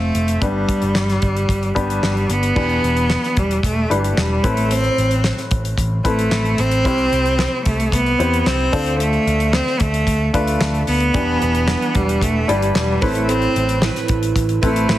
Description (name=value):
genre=piano-driven pop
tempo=112 BPM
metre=4/4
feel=straight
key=unclear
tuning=A4 = 438 Hz
part: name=clear cello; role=melody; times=0.0-15.0 s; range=G3 to C4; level=-19 LUFS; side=right 1 dB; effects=none
part: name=warm grand piano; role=accompaniment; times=0.0-15.0 s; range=G2 to D5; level=-23 LUFS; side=left 3 dB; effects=none
part: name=picked electric bass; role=bass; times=0.0-15.0 s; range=E1 to E2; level=-21 LUFS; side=equal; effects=none
part: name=damped 70s drum kit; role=drums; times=0.1-15.0 s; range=crash cymbal, handclaps, hi-hat, kick drum, snare drum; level=-22 LUFS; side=equal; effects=none
part: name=fingerpicked steel-string acoustic guitar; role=riff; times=11.1-15.0 s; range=A2 to B4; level=-24 LUFS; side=right 8 dB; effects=none
room=moderate large studio reverb, RT60 1.1 s, small room ambience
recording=heavily compressed radio sound, multiband compression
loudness=-15 LUFS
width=side -14 dB against mid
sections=0.0-2.6 A section; 2.6-15.0 B section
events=none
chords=0.4 G; 2.6 Em7; 4.4 Amadd9; 6.9 C; 8.7 Dm7; 11.1 Em7; 13.0 Amadd9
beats=| 0.42 0.95 1.49 2.03 | 2.56 3.10 3.64 4.17 | 4.71 5.25 5.78 6.32 | 6.85 7.39 7.93 8.46 | 9.00 9.54 10.07 10.61 | 11.14 11.68 12.22 12.75 | 13.29 13.82 14.36 14.90